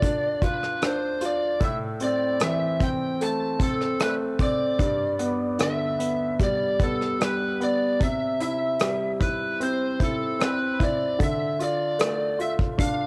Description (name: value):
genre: pop ballad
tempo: 75 BPM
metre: 4/4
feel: straight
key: A minor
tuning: A4 = 440 Hz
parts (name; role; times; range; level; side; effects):
- lead guitar through a small cranked amp; melody; 0.0-13.1 s; A4 to A5; -29 LUFS; equal; overdrive, cassette tape
- bright concert grand piano; accompaniment; 0.0-13.1 s; G2 to F4; -30 LUFS; equal; cassette tape
- unplugged drum kit; drums; 0.0-13.0 s; hi-hat, kick drum, rim click; -29 LUFS; equal; cassette tape
room: light reverb, studio reverb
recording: home recording on cassette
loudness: -25 LUFS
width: mono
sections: 0.0-13.1 A section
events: none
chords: 0.0 Dm; 1.6 Am; 4.8 G; 8.0 C; 11.2 Dm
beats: 0.03 0.82 | 1.61 2.41 3.20 4.00 | 4.80 5.60 6.40 7.20 | 8.01 8.81 9.61 10.40 | 11.20 11.99 12.79